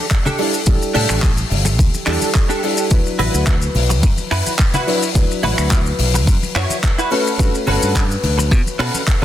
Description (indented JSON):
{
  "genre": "nu-disco, nu disco",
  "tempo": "107 BPM",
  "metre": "4/4",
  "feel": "straight",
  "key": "unclear",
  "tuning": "A4 = 439 Hz",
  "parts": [
    { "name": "dark grand piano", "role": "accompaniment", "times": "0.0-9.2 s", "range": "F#3 to B4", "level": "-23 LUFS", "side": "left 1 dB", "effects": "sidechain pumping, slapback echo" },
    { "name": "direct-recorded clean electric guitar", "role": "riff", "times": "0.0-9.2 s", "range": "C#4 to C#5", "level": "-22 LUFS", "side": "right 2 dB", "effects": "ensemble chorus, slapback echo" },
    { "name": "damped 70s drum kit", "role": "drums", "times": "0.1-9.2 s", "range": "finger snaps, handclaps, hi-hat, shaker", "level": "-21 LUFS", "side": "left 3 dB", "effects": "none" },
    { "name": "electronic kick drum", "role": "drums", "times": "0.1-9.2 s", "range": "none", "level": "-15 LUFS", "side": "equal", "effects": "none" },
    { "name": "cabasa and congas", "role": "percussion", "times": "0.1-9.2 s", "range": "none", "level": "-26 LUFS", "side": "left 2 dB", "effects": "none" },
    { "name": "modern bright fingered electric bass", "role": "bass", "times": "0.7-8.9 s", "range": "G1 to B2", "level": "-19 LUFS", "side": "equal", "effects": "none" }
  ],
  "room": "small room ambience",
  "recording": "dense, heavily limited modern master",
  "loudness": "-14 LUFS",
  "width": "side -12 dB against mid",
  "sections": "0.0-9.2 A section",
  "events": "none",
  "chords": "0.0 A7sus4; 2.9 D69; 7.1 Gmaj9#11"
}